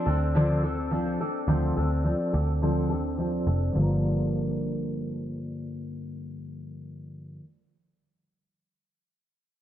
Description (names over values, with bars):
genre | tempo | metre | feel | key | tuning
indie pop | 106 BPM | 4/4 | swing 55% on 16ths | G minor | A4 = 439 Hz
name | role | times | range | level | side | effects
picked steel-string acoustic guitar | accompaniment | 0.0-7.5 s | G2 to Bb4 | -27 LUFS | equal | wide subtle chorus, vibrato effect, low-pass filter
vintage muted picked electric bass | bass | 0.1-7.4 s | F1 to D2 | -28 LUFS | equal | none
room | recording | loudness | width
moderate spring reverb, RT60 2.1 s | dark, warm production | -24 LUFS | side -11 dB against mid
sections
0.0-3.8 A section; 3.8-6.0 B section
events
filter sweep on steel-string acoustic guitar 0.0-3.8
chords
0.0 Dm7; 3.8 Gm7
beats
0.35 0.92 | 1.48 2.05 2.62 3.18 | 3.75 4.32 4.89 5.45